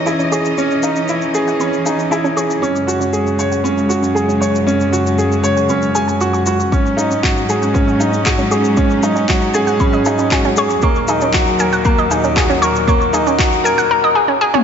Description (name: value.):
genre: piano and strings electronica.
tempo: 117 BPM.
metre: 4/4.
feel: straight.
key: C# dorian.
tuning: A4 = 440 Hz.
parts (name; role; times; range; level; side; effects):
rich symphonic string section; sustained chords; 0.0-13.9 s; D#2 to D#5; -19 LUFS; left 1 dB; none.
analog pluck; arpeggios; 0.0-14.6 s; C#4 to C#6; -21 LUFS; right 1 dB; chorus, sidechain pumping, tape echo.
bright baby grand piano; riff; 0.0-14.6 s; A#3 to G#5; -16 LUFS; right 1 dB; tape echo.
deep house drum kit; drums; 0.1-14.6 s; handclaps, shaker, toms; -23 LUFS; left 2 dB; none.
electronic kick drum; drums; 6.7-13.5 s; none; -17 LUFS; left 1 dB; none.
room: moderate concert hall reverb, RT60 2.1 s.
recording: nothing above 7.7 kHz.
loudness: -13 LUFS.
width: side -7 dB against mid.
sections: 0.0-14.6 A section.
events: build-up 0.0-14.6; filter sweep on synth arpeggio sound 0.0-14.6.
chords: 0.0 C#madd9; 2.6 F#sus2; 6.7 G#7sus4; 10.8 D#m.